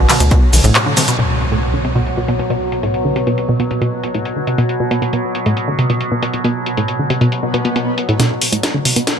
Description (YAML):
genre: driving peak-time techno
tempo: 137 BPM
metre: 4/4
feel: straight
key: unclear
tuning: A4 = 437 Hz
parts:
  - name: wide unison pluck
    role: riff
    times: 0.0-9.0 s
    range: A2 to D3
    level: -17 LUFS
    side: equal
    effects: sidechain pumping, digital delay
  - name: tight sequencer bass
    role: bass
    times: 0.0-0.7 s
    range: B1 to D2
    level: -13 LUFS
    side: equal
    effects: sidechain pumping
  - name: overtone-sweeping drone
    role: drone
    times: 0.0-9.2 s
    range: B2 to F#3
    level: -20 LUFS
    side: equal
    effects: chorus, built-in reverb, phaser, sidechain pumping
  - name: techno drum kit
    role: drums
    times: 0.1-9.2 s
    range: handclaps, hi-hat, ride cymbal, shaker, snare drum, toms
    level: -19 LUFS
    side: left 1 dB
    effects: sidechain pumping on hats, low-pass filter on hats, sidechain pumping on toms, low-pass filter on toms, sidechain pumping on cymbals, low-pass filter on cymbals, sidechain pumping on perc, low-pass filter on perc, low-pass filter on snare, low-pass filter on room
  - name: impact and swell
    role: sound effects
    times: 1.2-2.9, 7.4-8.2 s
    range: none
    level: -24 LUFS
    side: equal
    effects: none
room: moderate huge ambient reverb, RT60 7.0 s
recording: none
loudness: -14 LUFS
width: side -7 dB against mid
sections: 0.0-1.2 A section; 1.2-8.2 B section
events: drop 0.0-1.2; break 0.8-1.2; band accent 0.8; impact 1.2-2.9; filter sweep on synth arpeggio sound 1.2-8.2; swell 7.4-8.2; drum fill 8.2-9.2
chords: 0.0 Bm; 1.2 B5